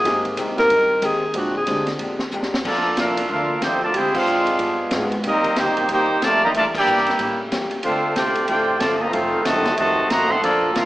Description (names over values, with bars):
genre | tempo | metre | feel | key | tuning
jazz, big band swing | 185 BPM | 4/4 | swing 62% on 8ths | Bb major | A4 = 440 Hz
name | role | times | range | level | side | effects
breathy alto saxophone | melody | 0.0-1.9 s | Gb4 to Bb4 | -18 LUFS | equal | none
hollow-body jazz guitar | accompaniment | 0.0-10.9 s | A2 to A4 | -29 LUFS | left 2 dB | none
warm baby grand piano | accompaniment | 0.0-1.9 s | Ab3 to Bb4 | -27 LUFS | right 1 dB | none
bright trombone section | sustained chords | 0.0-10.9 s | C#3 to A4 | -30 LUFS | equal | none
upright bass | bass | 0.0-10.9 s | F1 to A2 | -34 LUFS | equal | none
swinging big-band drum kit | drums | 0.1-10.9 s | crash cymbal, hi-hat, kick drum, ride cymbal, snare drum | -27 LUFS | equal | none
warm trombone section | second line | 2.6-10.9 s | C3 to A4 | -22 LUFS | right 1 dB | none
clear trumpet section | melody | 2.7-10.9 s | Bb3 to C6 | -20 LUFS | equal | none
room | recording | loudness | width
wet large studio reverb, RT60 1.1 s | small speaker sound | -17 LUFS | side -16 dB against mid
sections
0.0-2.6 A section; 2.6-10.9 B section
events
alto saxophone solo 0.0-2.6; drum fill 2.3-2.6; band accent 4.1, 6.7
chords
0.1 Abmaj7; 1.4 Bb13; 2.6 Bbmaj7; 3.9 Dm7b5; 4.6 G7b9; 5.2 Cm7; 6.5 Em7b5; 7.2 A7b9; 7.8 Dm7; 9.1 F7b9